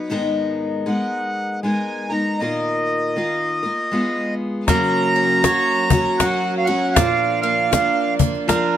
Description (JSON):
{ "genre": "acoustic folk duo or small band", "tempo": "79 BPM", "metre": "3/4", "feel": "swing 61% on 8ths", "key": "unclear", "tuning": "A4 = 437 Hz", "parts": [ { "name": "picked steel-string acoustic guitar", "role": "accompaniment", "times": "0.0-8.8 s", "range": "Gb2 to B4", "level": "-22 LUFS", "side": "left 2 dB", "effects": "none" }, { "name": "accordion", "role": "melody", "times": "0.9-8.1 s", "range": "Eb5 to Bb5", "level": "-20 LUFS", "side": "right 1 dB", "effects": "none" }, { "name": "pedal steel guitar", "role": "second line", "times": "4.7-8.8 s", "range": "Bb4 to D5", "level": "-26 LUFS", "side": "right 6 dB", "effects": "none" }, { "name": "warm chamber string section", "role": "sustained chords", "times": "4.7-8.8 s", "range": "F3 to Gb5", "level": "-30 LUFS", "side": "equal", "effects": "none" }, { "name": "picked steel-string acoustic guitar", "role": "arpeggios", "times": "4.7-8.8 s", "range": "F3 to Gb4", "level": "-25 LUFS", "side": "right 8 dB", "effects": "analog delay" }, { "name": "cajon", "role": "percussion", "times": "4.7-8.7 s", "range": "none", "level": "-18 LUFS", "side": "left 4 dB", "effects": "none" } ], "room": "light reverb", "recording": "close, detailed microphones", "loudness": "-17 LUFS", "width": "side -10 dB against mid", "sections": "0.0-4.7 A section; 4.7-8.8 B section", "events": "none", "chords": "0.1 Abmadd9; 2.4 Bbsus4; 3.9 Abm6; 4.7 Gb; 7.0 Bb", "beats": "| 0.11 0.87 1.64 | 2.40 3.16 3.92 | 4.68 5.45 6.21 | 6.97 7.73 8.49" }